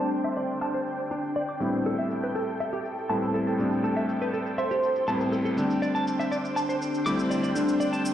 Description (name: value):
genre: nu-disco, nu disco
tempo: 121 BPM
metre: 4/4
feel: straight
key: A minor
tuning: A4 = 440 Hz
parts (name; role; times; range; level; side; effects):
- bright electric grand piano; accompaniment; 0.0-8.1 s; A2 to E4; -28 LUFS; left 1 dB; slapback echo
- string machine, full ensemble; sustained chords; 0.0-8.1 s; D4 to G5; -31 LUFS; equal; phaser, ensemble chorus
- direct-recorded clean electric guitar; riff; 0.0-8.0 s; D4 to D6; -32 LUFS; equal; wide subtle chorus, slapback echo
- electronic cabasa and finger snaps; drums; 0.0-8.1 s; none; -44 LUFS; equal; overdrive
- wide unison lead; melody; 3.1-5.3 s; A4 to C5; -30 LUFS; right 2 dB; wide subtle chorus, analog delay
room: moderate echo chamber reverb, RT60 2.4 s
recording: played on a big sound system in a bare room, stone room reverb, low-pass filter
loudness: -24 LUFS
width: side -10 dB against mid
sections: 0.0-8.1 A section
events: filter sweep on clean electric guitar 0.0-8.1; filter sweep 0.0-8.1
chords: 0.0 Am7